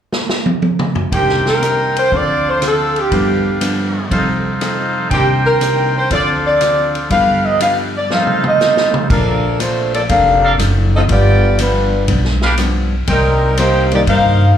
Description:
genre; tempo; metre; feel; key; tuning
jazz, big band swing; 120 BPM; 4/4; swing 69% on 8ths; Bb major; A4 = 440 Hz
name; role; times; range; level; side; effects
swinging big-band drum kit; drums; 0.1-14.2 s; crash cymbal, hi-hat, kick drum, ride cymbal, rim click, snare drum, toms; -21 LUFS; equal; none
clear saxophone section; melody; 1.1-14.6 s; F3 to F5; -15 LUFS; equal; slapback echo
dark grand piano; accompaniment; 1.1-9.1, 13.9-14.5 s; C2 to D5; -21 LUFS; right 3 dB; none
hollow-body jazz guitar; accompaniment; 1.1-14.4 s; G2 to B4; -23 LUFS; left 4 dB; slapback echo
clear trumpet section; stabs; 1.1-13.9 s; D4 to G5; -20 LUFS; equal; slapback echo
upright bass; bass; 9.1-14.5 s; F1 to G2; -15 LUFS; equal; none
room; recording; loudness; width
light reverb; live gig heard through the venue's PA, club reverb; -12 LUFS; side -9 dB against mid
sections
0.0-1.1 A section; 1.1-9.1 B section; 9.1-14.6 C section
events
drum fill 0.1-1.1, 8.1-9.1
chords
0.0 N.C.; 1.1 Cm7; 2.1 Dm7; 3.1 G7; 4.1 F7; 5.1 Cm7; 6.1 Dm7; 7.1 G7; 8.1 F7; 9.1 Bbmaj7; 11.1 G7; 13.1 Cm7

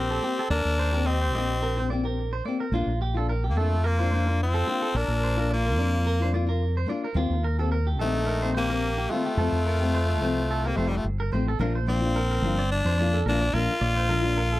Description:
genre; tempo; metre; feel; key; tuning
highlife; 108 BPM; 4/4; swing 54% on 16ths; Bb major; A4 = 435 Hz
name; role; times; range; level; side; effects
raspy tenor saxophone; melody; 0.0-14.6 s; G3 to F4; -27 LUFS; left 1 dB; none
bright trumpet; second line; 0.0-11.1 s; Eb4 to Bb4; -35 LUFS; left 5 dB; none
clean electric guitar; arpeggios; 0.0-14.6 s; F4 to Eb5; -32 LUFS; right 5 dB; tape echo
fingered electric bass; bass; 0.0-14.6 s; F1 to F2; -25 LUFS; equal; none
nylon-string guitar; accompaniment; 0.2-14.4 s; Eb3 to G4; -30 LUFS; left 4 dB; none
room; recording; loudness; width
little or no reverb; dry, close 1970s-style studio recording; -23 LUFS; side -16 dB against mid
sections
0.0-11.6 A section; 11.6-14.6 B section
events
none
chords
0.0 Eb6; 2.7 Bb; 7.2 Eb6; 9.4 Fadd9; 11.6 Bb

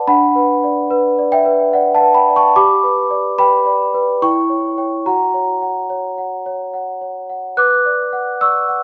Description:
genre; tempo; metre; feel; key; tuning
classical, lullaby for celesta; 72 BPM; 3/4; straight; B minor; A4 = 440 Hz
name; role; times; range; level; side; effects
large celesta; solo; 0.0-8.8 s; D4 to F#6; -16 LUFS; equal; none
room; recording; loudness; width
moderate concert hall reverb, RT60 2.2 s; recorded in a church or concert hall; -15 LUFS; mono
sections
0.0-8.8 A section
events
none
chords
0.1 Bm/D; 2.6 G; 4.2 C#dim/E; 5.0 F#; 7.6 Bm

